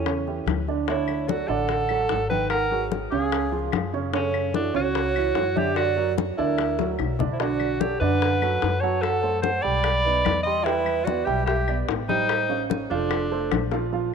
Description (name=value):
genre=Afro-Cuban jazz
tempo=147 BPM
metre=4/4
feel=straight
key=unclear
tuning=A4 = 440 Hz
part: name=clear alto saxophone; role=melody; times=0.0-13.7 s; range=C#4 to D#5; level=-26 LUFS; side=left 2 dB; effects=tape echo
part: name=breathy mellow concert flute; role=second line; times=0.0-13.7 s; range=A4 to C6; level=-29 LUFS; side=right 8 dB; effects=none
part: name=warm upright piano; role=accompaniment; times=0.0-14.1 s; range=C#3 to G5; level=-28 LUFS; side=right 9 dB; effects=none
part: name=upright bass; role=bass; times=0.0-14.1 s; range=E#1 to F#2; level=-29 LUFS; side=left 2 dB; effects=none
part: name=bongos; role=percussion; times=0.1-13.8 s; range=none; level=-32 LUFS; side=left 16 dB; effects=none
part: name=claves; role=percussion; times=0.1-13.7 s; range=none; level=-37 LUFS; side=left 17 dB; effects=none
part: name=congas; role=percussion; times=0.1-14.1 s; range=none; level=-31 LUFS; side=left 13 dB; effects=none
room=moderate plate reverb, RT60 2.7 s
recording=1960s-style stereo with parts hard left and right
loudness=-21 LUFS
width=side -6 dB against mid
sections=0.9-13.9 A section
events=drum fill 6.8-7.4, 13.7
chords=0.0 A7; 0.9 Dmaj9; 2.5 G#5; 3.3 C#; 4.1 F#m7; 5.8 F#aug7; 7.4 Bm7; 9.0 F#dim; 9.8 Baug; 10.7 Em7; 12.3 A7alt; 13.1 F6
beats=0.06 0.47 | 0.88 1.28 1.69 2.10 | 2.50 2.91 3.32 3.73 | 4.14 4.54 4.95 5.36 | 5.77 6.18 6.58 6.99 | 7.40 7.81 8.22 8.62 | 9.03 9.44 9.85 10.26 | 10.66 11.07 11.48 11.89 | 12.30 12.71 13.11 13.52 | 13.93